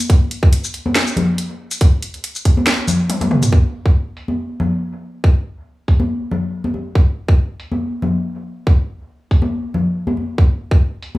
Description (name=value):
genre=dubstep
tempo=140 BPM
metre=4/4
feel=swing 54% on 16ths, half-time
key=none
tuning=none
part: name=garage drum kit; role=drums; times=0.0-11.1 s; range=hi-hat, shaker, snare drum, toms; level=-19 LUFS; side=equal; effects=overdrive, low-pass filter on hats, low-pass filter on perc, low-pass filter on snare, low-pass filter on toms
part: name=electronic kick drum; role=drums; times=0.1-10.8 s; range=none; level=-11 LUFS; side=equal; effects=overdrive
part: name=congas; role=percussion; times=0.9-11.2 s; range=none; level=-20 LUFS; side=left 1 dB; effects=dub echo
room=light reverb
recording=small room ambience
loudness=-15 LUFS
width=side -18 dB against mid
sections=0.0-3.5 A section; 3.5-11.2 B section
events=drum fill 3.1-3.5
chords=none